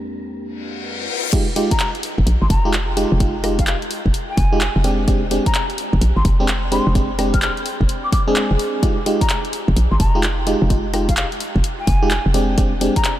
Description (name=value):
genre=UK garage, two-step garage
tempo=128 BPM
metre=4/4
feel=swing 64% on 16ths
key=F dorian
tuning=A4 = 440 Hz
part: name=FM electric piano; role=stabs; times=0.0-13.0 s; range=F2 to Ab4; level=-22 LUFS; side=right 1 dB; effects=chorus, low-pass filter, diffuse ambient delay
part: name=reverse cymbal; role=sound effects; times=0.6-1.3 s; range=none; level=-28 LUFS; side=left 6 dB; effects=none
part: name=electronic kick drum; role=drums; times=1.3-13.0 s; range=none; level=-20 LUFS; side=equal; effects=none
part: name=house drum kit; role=drums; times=1.3-13.2 s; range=crash cymbal, handclaps, hi-hat, rim click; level=-25 LUFS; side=equal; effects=none
part: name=mellow hollow jazz flute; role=melody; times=1.7-13.2 s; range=F5 to F6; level=-26 LUFS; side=left 2 dB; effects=diffuse ambient delay
part: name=hollow knocking FM bass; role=bass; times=2.2-12.9 s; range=F1 to Bb1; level=-19 LUFS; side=equal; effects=none
room=light reverb, digital ambience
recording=none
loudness=-16 LUFS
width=side -13 dB against mid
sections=0.0-1.3 A section; 1.3-13.2 B section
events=reverse cymbal 0.6-1.3; drop 1.3-13.2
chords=0.0 Bb13/F; 1.3 Fm9; 4.8 Bb13/F (rootless); 8.8 Fm9; 12.3 Bb13/F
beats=0.39 0.86 | 1.33 1.80 2.27 2.73 | 3.20 3.67 4.14 4.61 | 5.08 5.55 6.01 6.48 | 6.95 7.42 7.89 8.36 | 8.83 9.30 9.77 10.23 | 10.70 11.17 11.64 12.11 | 12.58 13.05